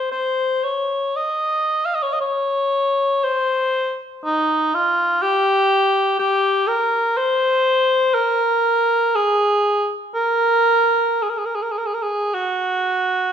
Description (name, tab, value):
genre	classical, free, expressive piece for unaccompanied cor anglais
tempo	46-63 BPM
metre	3/4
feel	rubato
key	unclear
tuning	A4 = 439 Hz
part	mellow cor anglais	solo	0.0-13.3 s	Eb4 to F5	-17 LUFS	equal	none
room	wet recital hall reverb, RT60 1.5 s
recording	recorded in a church or concert hall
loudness	-17 LUFS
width	side -8 dB against mid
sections	0.0-13.3 A section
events	none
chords	none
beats	0.12 | 1.16 2.20 3.23 | 4.25 5.23 6.19 | 7.17 8.14 9.15 | 10.16 11.22 12.35